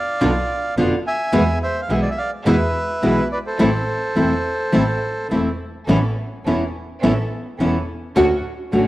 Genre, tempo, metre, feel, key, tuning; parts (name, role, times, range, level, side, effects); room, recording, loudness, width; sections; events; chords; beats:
tango; 106 BPM; 4/4; rubato; A minor; A4 = 441 Hz
bandoneon; melody; 0.0-5.3 s; A4 to G#5; -22 LUFS; right 1 dB; cassette tape
nylon-string guitar; accompaniment; 0.2-8.9 s; B2 to F#4; -19 LUFS; equal; cassette tape
rich chamber string section; stabs; 0.2-8.9 s; B3 to A4; -30 LUFS; right 2 dB; cassette tape
clear double bass; bass; 0.2-8.9 s; E1 to E2; -25 LUFS; equal
light reverb, studio ambience; home recording on cassette; -17 LUFS; side -16 dB against mid
0.0-5.9 A section; 5.9-8.9 B section
0.0 Bdim; 1.3 E; 3.6 Am; 5.9 Aadd9; 8.2 Dmaj7
0.21 0.77 | 1.33 1.90 2.46 3.03 | 3.59 4.16 4.73 5.31 | 5.88 6.46 7.03 7.59 | 8.16 8.72